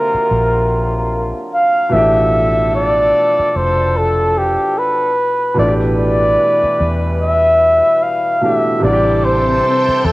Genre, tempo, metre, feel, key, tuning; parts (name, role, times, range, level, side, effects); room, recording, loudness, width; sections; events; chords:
R&B; 74 BPM; 4/4; swing 58% on 16ths; A4 = 439 Hz
mellow flugelhorn; melody; 0.0-10.1 s; G4 to E#5; -14 LUFS; equal; cassette tape, plate reverb
warm upright piano; accompaniment; 0.0-10.1 s; B2 to G4; -21 LUFS; right 1 dB; plate reverb
warm horn section; stabs; 0.0-10.1 s; C3 to B4; -24 LUFS; left 1 dB; plate reverb, tape echo
vintage muted fingered electric bass; bass; 0.1-10.1 s; F1 to E2; -19 LUFS; equal
string machine, full ensemble; sustained chords; 8.8-10.1 s; C4 to A5; -22 LUFS; left 2 dB; phaser, ensemble chorus, plate reverb
wet small room reverb, RT60 0.5 s; home recording on cassette; -12 LUFS; side -19 dB against mid
0.0-10.1 A section
0.0 D7alt; 1.9 G9; 5.6 Em7/A; 8.8 Am7